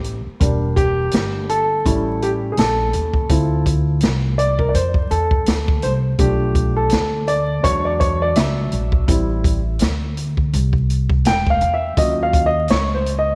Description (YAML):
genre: hip hop, jazz-hop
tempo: 83 BPM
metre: 4/4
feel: swing 59% on 16ths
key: A phrygian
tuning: A4 = 440 Hz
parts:
  - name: dark upright piano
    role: accompaniment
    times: 0.0-13.3 s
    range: F3 to G5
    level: -22 LUFS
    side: equal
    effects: none
  - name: upright bass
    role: bass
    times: 0.0-13.3 s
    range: E1 to F2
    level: -23 LUFS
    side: equal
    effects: none
  - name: open jazz drum kit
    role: drums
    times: 0.0-13.3 s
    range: hi-hat, kick drum, snare drum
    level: -22 LUFS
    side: equal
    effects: none
room: moderate echo chamber reverb, RT60 1.9 s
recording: vinyl crackle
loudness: -18 LUFS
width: mono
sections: 0.0-13.3 A section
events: upright piano solo 0.0-13.3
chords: 0.4 Em7b5; 1.9 A7; 3.3 Dm7; 6.2 Bm7b5; 7.6 E7; 9.1 Am7; 12.0 D#m7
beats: | 0.41 1.13 1.85 2.58 | 3.30 4.02 4.74 5.47 | 6.19 6.91 7.64 8.36 | 9.08 9.80 10.53 11.25 | 11.97 12.70